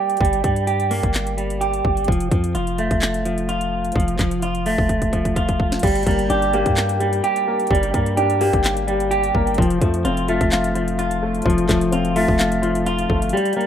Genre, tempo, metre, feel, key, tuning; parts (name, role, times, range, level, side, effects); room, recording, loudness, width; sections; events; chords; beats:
hip hop, trap; 128 BPM; 4/4; half-time; G minor; A4 = 440 Hz
clean electric guitar; arpeggios; 0.0-13.7 s; F3 to G4; -20 LUFS; right 1 dB; vibrato effect, digital delay
trap drum kit; drums; 0.1-13.7 s; crash cymbal, handclaps, hi-hat, kick drum, snare drum; -22 LUFS; equal; overdrive
long sustained 808-style bass; bass; 0.2-13.3 s; F1 to G2; -25 LUFS; equal
felt-muted upright piano; accompaniment; 5.8-13.7 s; F3 to G5; -22 LUFS; left 4 dB
light reverb; rough home demo mix; -17 LUFS; side -9 dB against mid
0.0-5.8 A section; 5.8-13.7 B section
drum fill 4.9-5.8; kick muted 13.3-13.7
0.0 Gm; 2.1 F; 5.8 Gm; 9.6 F
| 0.21 0.68 1.14 1.61 | 2.08 2.55 3.02 3.49 | 3.96 4.42 4.89 5.36 | 5.83 6.30 6.77 7.24 | 7.71 8.18 8.64 9.11 | 9.58 10.05 10.52 10.99 | 11.46 11.93 12.39 12.86 | 13.33